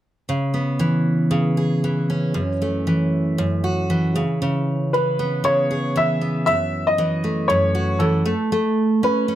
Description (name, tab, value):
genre	pop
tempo	117 BPM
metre	4/4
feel	swing 55% on 16ths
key	C# minor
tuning	A4 = 439 Hz
part	picked steel-string acoustic guitar	accompaniment	0.3-9.4 s	F#2 to G#4	-19 LUFS	equal	none
part	clear upright piano	melody	4.9-9.4 s	A4 to E5	-20 LUFS	equal	none
room	light reverb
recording	none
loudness	-18 LUFS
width	side -12 dB against mid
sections	0.3-4.4 A section; 4.4-9.4 B section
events	none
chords	0.3 C#m7; 2.4 F#m7; 4.2 N.C.; 4.4 C#m7; 6.5 F#m7; 8.3 Aadd9